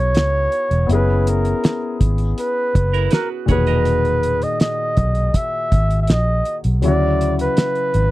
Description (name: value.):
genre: lush 1970s-style soul.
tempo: 81 BPM.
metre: 4/4.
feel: straight.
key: unclear.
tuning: A4 = 441 Hz.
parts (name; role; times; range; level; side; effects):
breathy flugelhorn; melody; 0.0-8.1 s; A#4 to E5; -20 LUFS; right 1 dB; none.
warm concert grand piano; accompaniment; 0.0-8.1 s; A#2 to G#4; -24 LUFS; left 4 dB; none.
vintage muted fingered electric bass; bass; 0.0-8.1 s; E1 to D2; -18 LUFS; equal; none.
cloth-damped thuddy drum kit; drums; 0.1-8.1 s; hi-hat, kick drum, snare drum; -17 LUFS; equal; none.
semi-hollow electric guitar; riff; 2.9-4.8 s; E4 to D#5; -27 LUFS; right 13 dB; none.
room: little or no reverb.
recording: dry, close 1970s-style studio recording.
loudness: -15 LUFS.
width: side -17 dB against mid.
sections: 0.0-8.1 A section.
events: none.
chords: 0.0 C#m11; 0.9 F#9sus4; 3.5 Emaj9#11; 6.8 Dmaj9.